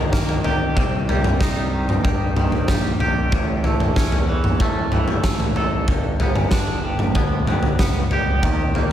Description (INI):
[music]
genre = quiet-loud alternative rock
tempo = 94 BPM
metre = 4/4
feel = straight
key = unclear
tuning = A4 = 438 Hz
[part]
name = twangy electric guitar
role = arpeggios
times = 0.0-8.9 s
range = G2 to A4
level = -25 LUFS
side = right 2 dB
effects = tremolo, slapback echo
[part]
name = fuzz fingered electric bass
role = bass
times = 0.0-8.9 s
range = G1 to Eb3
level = -25 LUFS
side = equal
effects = overdrive
[part]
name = big rock drum kit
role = drums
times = 0.1-8.9 s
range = kick drum, snare drum, toms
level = -19 LUFS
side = equal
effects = none
[sound]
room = moderate lush hall reverb, RT60 1.8 s, studio reverb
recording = big arena sound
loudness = -17 LUFS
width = side -10 dB against mid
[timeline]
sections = 0.0-8.9 A section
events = none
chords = 0.0 Eb; 0.8 Cm; 3.3 A; 5.9 G